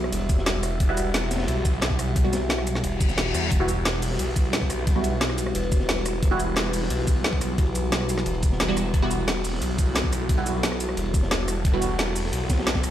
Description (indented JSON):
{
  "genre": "dark technical drum and bass",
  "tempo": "177 BPM",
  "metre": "4/4",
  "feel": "straight",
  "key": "E minor",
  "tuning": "A4 = 442 Hz",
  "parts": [
    { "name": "dark analog pad", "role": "sustained chords", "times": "0.0-12.9 s", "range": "G3 to E5", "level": "-30 LUFS", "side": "equal", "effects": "chorus, sidechain pumping" },
    { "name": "phased detuned saw bass", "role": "bass", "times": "0.0-12.9 s", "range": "E1 to E2", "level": "-27 LUFS", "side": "equal", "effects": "phaser, tube saturation" },
    { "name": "drum and bass drum kit", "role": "drums", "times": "0.0-12.9 s", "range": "hi-hat, rim click, shaker, snare drum", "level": "-28 LUFS", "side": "equal", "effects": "overdrive" },
    { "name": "crunchy breakbeat drum kit", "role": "drums", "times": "0.1-12.9 s", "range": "hi-hat, ride cymbal, snare drum", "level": "-34 LUFS", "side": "left 1 dB", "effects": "high-pass filter on cymbals, high-pass filter on hats, high-pass filter on snare, high-pass filter on room" },
    { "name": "electronic kick drum", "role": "drums", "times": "0.3-12.8 s", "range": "none", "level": "-23 LUFS", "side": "equal", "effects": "overdrive" },
    { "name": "filtered dub chord stab", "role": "stabs", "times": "0.9-6.4, 8.7-11.8 s", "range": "G3 to F#4", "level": "-29 LUFS", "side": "right 2 dB", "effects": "phaser, ensemble chorus, digital delay" },
    { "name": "reverse cymbal", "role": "sound effects", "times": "2.9-3.5 s", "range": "none", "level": "-31 LUFS", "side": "left 6 dB", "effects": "none" }
  ],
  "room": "light reverb, small room ambience",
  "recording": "played on a big sound system in a bare room, stone room reverb",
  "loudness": "-21 LUFS",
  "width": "side -11 dB against mid",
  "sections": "0.0-12.9 A section",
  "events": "reverse cymbal 2.9-3.5",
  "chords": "0.0 Emadd9"
}